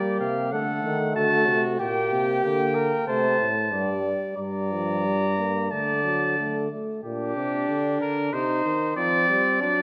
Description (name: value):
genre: classical, imitative canzona for brass ensemble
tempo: 93 BPM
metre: 4/4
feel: straight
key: G minor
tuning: A4 = 436 Hz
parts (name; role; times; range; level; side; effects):
- warm trumpet; melody; 0.0-9.8 s; G4 to Bb5; -28 LUFS; equal; none
- clear flugelhorn; second line; 0.0-9.8 s; C4 to D5; -30 LUFS; equal; none
- mellow trombone; accompaniment; 0.0-9.8 s; Bb2 to Bb3; -31 LUFS; equal; none
- warm bass trombone; bass; 0.0-6.7 s; G2 to G3; -32 LUFS; equal; none
room: moderate scoring stage reverb, RT60 1.7 s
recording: none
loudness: -24 LUFS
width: mono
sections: 0.0-7.0 A section; 7.0-9.8 B section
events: none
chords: 0.0 Gm; 0.5 D; 1.8 Gm/Bb; 3.1 C5; 4.4 Dsus4/G; 5.7 D; 7.0 Gm/Bb; 8.3 Cmadd9